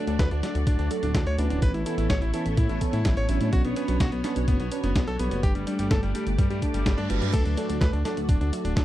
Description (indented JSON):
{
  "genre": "italo disco",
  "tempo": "126 BPM",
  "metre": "4/4",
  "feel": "straight",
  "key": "D major",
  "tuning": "A4 = 440 Hz",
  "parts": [
    { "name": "bright electric grand piano", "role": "melody", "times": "0.0-8.8 s", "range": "G3 to C#5", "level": "-32 LUFS", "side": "left 2 dB", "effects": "tape echo" },
    { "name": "string machine, full ensemble", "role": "sustained chords", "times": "0.0-8.8 s", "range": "A3 to D5", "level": "-34 LUFS", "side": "equal", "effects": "ensemble chorus" },
    { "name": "chorused polysynth", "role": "stabs", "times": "0.0-8.7 s", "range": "E3 to C#5", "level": "-32 LUFS", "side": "right 3 dB", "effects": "none" },
    { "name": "chorused synth bass", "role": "bass", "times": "0.1-8.8 s", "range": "D1 to A2", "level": "-26 LUFS", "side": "equal", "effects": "none" },
    { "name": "dusty soul sampler-style drum kit", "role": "drums", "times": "0.1-8.8 s", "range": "crash cymbal, hi-hat, snare drum", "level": "-32 LUFS", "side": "equal", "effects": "none" },
    { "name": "electronic kick drum", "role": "drums", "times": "0.2-8.8 s", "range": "none", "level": "-24 LUFS", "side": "equal", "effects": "overdrive" },
    { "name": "reverse cymbal", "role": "sound effects", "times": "6.7-7.3 s", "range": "none", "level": "-37 LUFS", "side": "right 9 dB", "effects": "none" }
  ],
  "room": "little or no reverb",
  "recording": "dry, close 1970s-style studio recording, lossy compression artefacts",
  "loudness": "-22 LUFS",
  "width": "side -14 dB against mid",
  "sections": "0.0-8.8 A section",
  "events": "reverse cymbal 6.7-7.3",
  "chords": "0.0 D; 1.6 Aadd9; 3.5 Bmadd9; 5.4 Gsus2; 7.3 D"
}